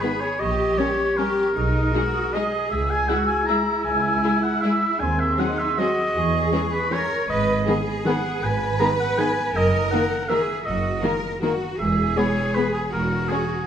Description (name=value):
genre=classical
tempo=158 BPM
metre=3/4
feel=uneven beats, rubato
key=unclear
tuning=A4 = 441 Hz
part: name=warm symphonic violin section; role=melody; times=0.0-13.4 s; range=G#4 to B4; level=-37 LUFS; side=left 6 dB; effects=none
part: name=clear oboe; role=second line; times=0.0-13.7 s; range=G#4 to A#5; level=-25 LUFS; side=right 1 dB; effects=none
part: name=dark clarinet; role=second line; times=0.0-13.4 s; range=G4 to A#4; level=-30 LUFS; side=left 2 dB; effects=none
part: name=mellow hollow large flute ensemble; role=second line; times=0.0-13.4 s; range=A#5 to E6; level=-29 LUFS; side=equal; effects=none
part: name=warm symphonic violin section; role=second line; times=0.0-13.4 s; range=A#3 to E4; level=-32 LUFS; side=left 4 dB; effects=none
part: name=rich symphonic viola section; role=accompaniment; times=0.0-13.4 s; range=D#3 to G#3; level=-29 LUFS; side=equal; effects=none
part: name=rich symphonic cello section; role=bass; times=0.0-13.7 s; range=B#3 to B4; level=-27 LUFS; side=equal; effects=none
part: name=rich symphonic double bass section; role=bass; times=0.4-13.2 s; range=E1 to E2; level=-26 LUFS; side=right 2 dB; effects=none
room=wet recital hall reverb, RT60 1.4 s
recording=none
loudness=-20 LUFS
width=side -8 dB against mid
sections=0.0-13.7 A section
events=none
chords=0.4 D#7/A#; 1.6 G#m/B; 2.7 C#m; 5.0 G#7/D#; 6.2 C#m/E; 7.3 G#m; 9.5 D#m/F#; 11.8 E; 12.9 C#m/E